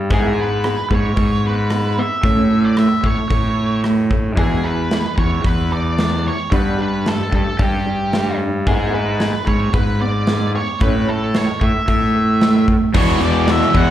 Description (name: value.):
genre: quiet-loud alternative rock.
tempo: 112 BPM.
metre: 4/4.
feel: straight.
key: E mixolydian.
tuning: A4 = 439 Hz.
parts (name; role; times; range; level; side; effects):
electric guitar through a small old amp; arpeggios; 0.0-12.9 s; E2 to E4; -24 LUFS; right 2 dB; tremolo, slapback echo.
fuzz fingered electric bass; bass; 0.0-13.9 s; E2 to A2; -18 LUFS; equal; overdrive.
octave-fuzz lead guitar; melody; 0.1-13.9 s; G4 to F#5; -23 LUFS; right 1 dB; distortion, slapback echo, analog delay.
big rock drum kit; drums; 0.1-13.9 s; crash cymbal, hi-hat, kick drum, rim click, snare drum; -21 LUFS; equal; none.
cranked stack guitar; riff; 12.9-13.9 s; E2 to E3; -20 LUFS; left 3 dB; overdrive.
overdriven electric guitar; riff; 12.9-13.9 s; E3 to G#4; -21 LUFS; right 10 dB; none.
tight distorted guitar; riff; 12.9-13.9 s; E2 to E3; -22 LUFS; left 12 dB; distortion, slapback echo.
room: small room ambience.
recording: live gig heard through the venue's PA, club reverb.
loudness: -15 LUFS.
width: side -12 dB against mid.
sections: 0.0-12.9 A section.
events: none.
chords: 0.1 E/G# (rootless); 2.2 A; 4.4 E5; 6.5 G; 8.7 E/G# (rootless); 10.8 A5; 12.9 E.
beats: | 0.11 0.64 1.17 1.71 | 2.24 2.77 3.31 3.84 | 4.37 4.91 5.44 5.98 | 6.52 7.05 7.59 8.12 | 8.66 9.20 9.73 10.27 | 10.81 11.34 11.88 12.41 | 12.94 13.47.